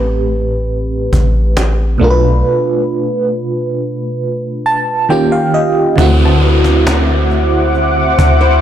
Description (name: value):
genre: contemporary R&B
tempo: 68 BPM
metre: 4/4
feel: straight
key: unclear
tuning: A4 = 442 Hz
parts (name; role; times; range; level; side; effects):
- FM electric piano with tremolo; accompaniment; 0.0-8.6 s; A2 to A5; -14 LUFS; right 1 dB; phaser
- soft 808-style bass; bass; 0.0-8.6 s; A1 to D2; -13 LUFS; equal; none
- cajon; drums; 1.1-8.4 s; none; -19 LUFS; equal; none
- deep dark ambient pad; sustained chords; 6.7-8.6 s; C5 to D6; -15 LUFS; left 1 dB; chorus, built-in reverb
- downlifter; sound effects; 6.0-8.6 s; none; -20 LUFS; equal; none
- glassy wavetable pluck; texture; 6.0-8.4 s; F#5 to A5; -26 LUFS; right 2 dB; chorus, digital delay
- flamenco guitar; arpeggios; 8.4-8.6 s; E4 to C5; -16 LUFS; left 3 dB; none
room: light reverb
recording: blown-out, overdriven recording, overdrive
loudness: -11 LUFS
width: side -10 dB against mid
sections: 0.0-6.0 A section; 6.0-8.6 B section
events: FM electric piano fill 4.2-6.0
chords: 0.0 Am9; 2.0 Bm7b5; 5.1 D#9; 6.0 D9